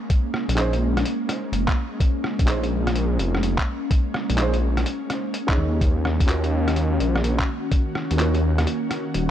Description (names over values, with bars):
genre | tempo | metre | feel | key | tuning
future garage | 126 BPM | 4/4 | swing 64% on 16ths | Bb minor | A4 = 443 Hz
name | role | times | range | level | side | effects
ethereal airy pad | sustained chords | 0.0-9.3 s | Eb3 to Gb4 | -27 LUFS | equal | ensemble chorus, built-in reverb, vintage 12-bit sampler grit, sidechain pumping
electronic kick drum | drums | 0.1-7.8 s | none | -20 LUFS | equal | none
lo-fi sampler-style drum kit | drums | 0.1-9.3 s | handclaps, hi-hat, rim click | -29 LUFS | equal | none
swelling detuned saw bass | bass | 0.5-9.3 s | Eb1 to Eb2 | -22 LUFS | equal | tube saturation, sidechain pumping
felt-muted upright piano | accompaniment | 0.6-8.3 s | Db4 to Db5 | -31 LUFS | right 4 dB | vintage 12-bit sampler grit, sidechain pumping, tape echo
room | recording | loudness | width
light reverb | none | -20 LUFS | side -10 dB against mid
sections
0.0-9.3 A section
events
none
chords
0.0 Bbm11; 5.8 Ebm7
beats
| 0.10 0.57 1.05 1.53 | 2.00 2.48 2.96 3.43 | 3.91 4.38 4.86 5.34 | 5.81 6.29 6.76 7.24 | 7.72 8.19 8.67 9.15